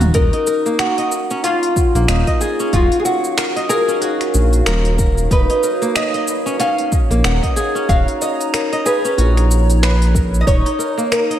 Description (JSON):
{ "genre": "organic downtempo", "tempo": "93 BPM", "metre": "4/4", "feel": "swing 58% on 16ths", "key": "Eb minor", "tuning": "A4 = 440 Hz", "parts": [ { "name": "warbly tape-like pad", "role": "sustained chords", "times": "0.0-11.4 s", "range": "Eb4 to Bb5", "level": "-24 LUFS", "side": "right 1 dB", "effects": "chorus, built-in reverb, sidechain pumping" }, { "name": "kora", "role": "arpeggios", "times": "0.0-11.4 s", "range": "Bb3 to Eb5", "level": "-22 LUFS", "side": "equal", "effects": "analog delay" }, { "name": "smooth synth bass", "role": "bass", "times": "0.0-10.6 s", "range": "Eb1 to Bb1", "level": "-15 LUFS", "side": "equal", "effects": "sidechain pumping" }, { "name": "organic electronic drum kit", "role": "drums", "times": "0.0-11.4 s", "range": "cabasa, finger snaps, hi-hat, toms", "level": "-24 LUFS", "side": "right 1 dB", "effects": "small room ambience" }, { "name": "oud", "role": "melody", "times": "0.1-11.4 s", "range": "Eb4 to F#5", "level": "-19 LUFS", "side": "equal", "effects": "tape echo" }, { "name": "electronic kick drum", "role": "drums", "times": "0.1-10.6 s", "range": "none", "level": "-17 LUFS", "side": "equal", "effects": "small room ambience" } ], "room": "moderate lush hall reverb, RT60 1.7 s", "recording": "dreamy mix soaked in reverb", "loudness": "-14 LUFS", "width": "side -11 dB against mid", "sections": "0.1-11.4 A section", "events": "none", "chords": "0.0 Ebm11; 5.3 Bmaj7/D#; 10.5 Ebm7" }